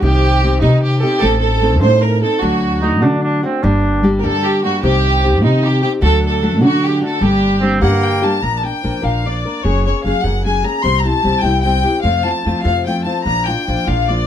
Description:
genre	mexican folk, mariachi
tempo	100 BPM (dotted quarters)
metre	6/8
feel	rubato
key	G harmonic minor, Bb major from 8.4 s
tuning	A4 = 440 Hz
part	rich chamber violin section	melody	0.0-14.3 s	Eb4 to C6	-18 LUFS	equal	none
part	nylon-string guitar	accompaniment	0.0-14.3 s	F2 to Bb4	-18 LUFS	left 2 dB	none
part	upright bass	bass	0.0-14.3 s	Gb1 to D3	-17 LUFS	equal	none
part	clear trumpet	second line	2.8-4.1, 7.6-8.4 s	Bb3 to Eb4	-19 LUFS	right 3 dB	none
room	light reverb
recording	none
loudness	-13 LUFS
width	side -10 dB against mid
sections	0.0-8.4 A section; 8.4-14.3 B section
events	none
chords	0.0 Cm; 1.2 Adim; 2.4 D; 3.6 Gm; 4.8 Cm; 6.0 D; 7.2 Gm; 8.4 Bb; 9.6 Gbadd9; 10.8 C; 12.0 F; 13.3 Bb

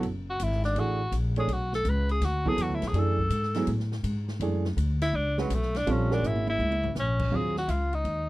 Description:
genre	modal jazz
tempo	164 BPM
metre	4/4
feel	swing 66% on 8ths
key	unclear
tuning	A4 = 440 Hz
part	clear tenor saxophone	melody	0.0-8.3 s	F#3 to B4	-30 LUFS	equal	none
part	bright upright piano	accompaniment	0.0-7.5 s	E3 to C#5	-31 LUFS	right 4 dB	none
part	upright bass	bass	0.0-8.3 s	F#1 to A2	-28 LUFS	left 1 dB	none
part	open jazz drum kit	drums	0.0-8.2 s	crash cymbal, hi-hat, kick drum, ride cymbal, snare drum, toms	-38 LUFS	left 1 dB	none
room	little or no reverb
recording	dry, close 1970s-style studio recording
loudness	-25 LUFS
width	side -18 dB against mid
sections	0.0-7.3 A section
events	tenor saxophone solo 0.0-7.3; drum fill 6.2-7.0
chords	0.0 Bm7 (rootless); 1.5 D; 5.9 A#m7; 7.3 Ebm9

